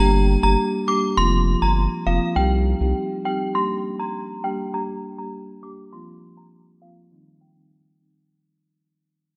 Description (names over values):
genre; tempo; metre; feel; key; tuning
dancehall; 101 BPM; 4/4; straight; G minor; A4 = 436 Hz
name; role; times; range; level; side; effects
synth chime; melody; 0.0-7.5 s; F5 to D6; -27 LUFS; equal; ensemble chorus, tremolo, low-pass filter, tape echo
marimba with medium mallets; accompaniment; 0.0-8.3 s; Eb3 to G4; -27 LUFS; equal; low-pass filter
round analog bass; bass; 0.0-2.9 s; F1 to C2; -22 LUFS; equal; none
room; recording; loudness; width
light reverb, small room ambience; none; -22 LUFS; mono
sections
0.0-8.3 A section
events
fade-out 0.0-8.3; filter sweep 0.0-8.3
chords
0.0 Gm; 1.2 Fsus4; 2.4 Cm; 3.6 Gm; 5.9 Fsus4; 7.1 Cm